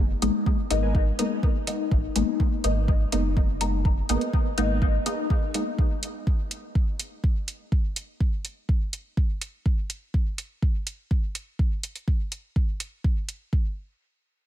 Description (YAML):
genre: dub techno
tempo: 124 BPM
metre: 4/4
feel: straight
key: G# minor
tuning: A4 = 440 Hz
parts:
  - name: soft dub sub bass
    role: bass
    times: 0.0-5.0 s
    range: F#1 to G#1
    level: -26 LUFS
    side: equal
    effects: sidechain pumping
  - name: filtered dub chord stab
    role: stabs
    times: 0.2-5.8 s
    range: G#3 to D#4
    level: -27 LUFS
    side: left 2 dB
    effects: phaser, cassette tape, sidechain pumping, dub echo
  - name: electronic hi-hat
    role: drums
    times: 0.2-13.4 s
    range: none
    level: -31 LUFS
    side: right 2 dB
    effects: overdrive
  - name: electronic kick drum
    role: drums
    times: 0.5-13.6 s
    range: none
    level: -23 LUFS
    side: equal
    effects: none
  - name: warbly lo-fi synth keys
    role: riff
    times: 0.8-0.9 s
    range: A#4 to G#5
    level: -44 LUFS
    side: right 3 dB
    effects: chorus, sidechain pumping, dub echo
room: light reverb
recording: none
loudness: -23 LUFS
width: side -12 dB against mid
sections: 0.0-13.5 A section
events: none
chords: 0.0 G#madd9; 13.5 N.C.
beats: 0.46 0.95 1.43 | 1.91 2.40 2.88 3.37 | 3.85 4.33 4.82 5.30 | 5.79 6.27 6.75 7.24 | 7.72 8.21 8.69 9.17 | 9.66 10.14 10.62 11.11 | 11.59 12.08 12.56 13.04 | 13.53